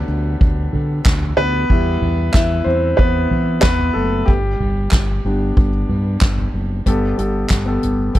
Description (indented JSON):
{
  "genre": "piano-driven pop",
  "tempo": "93 BPM",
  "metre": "4/4",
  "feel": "straight",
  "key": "unclear",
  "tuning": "A4 = 441 Hz",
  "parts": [
    { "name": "warm grand piano", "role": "accompaniment", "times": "0.0-8.2 s", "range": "G2 to E5", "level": "-20 LUFS", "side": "left 1 dB", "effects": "none" },
    { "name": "fingered electric bass", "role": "bass", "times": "0.0-8.2 s", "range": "F#1 to E3", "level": "-20 LUFS", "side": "equal", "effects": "none" },
    { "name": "soft-mallet drum kit", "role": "drums", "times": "0.1-8.2 s", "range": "handclaps, hi-hat, kick drum, ride cymbal, snare drum, toms", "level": "-18 LUFS", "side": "equal", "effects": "none" }
  ],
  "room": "little or no reverb",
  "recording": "dry, close 1970s-style studio recording",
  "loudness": "-15 LUFS",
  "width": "side -14 dB against mid",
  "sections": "0.0-6.9 A section; 6.9-8.2 B section",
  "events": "grand piano solo 0.0-6.9",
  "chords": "0.0 D; 1.7 Em; 4.3 G; 6.9 Gadd9",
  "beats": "0.41 1.05 | 1.70 2.34 2.99 3.63 | 4.28 4.92 5.57 6.21 | 6.86 7.50 8.15"
}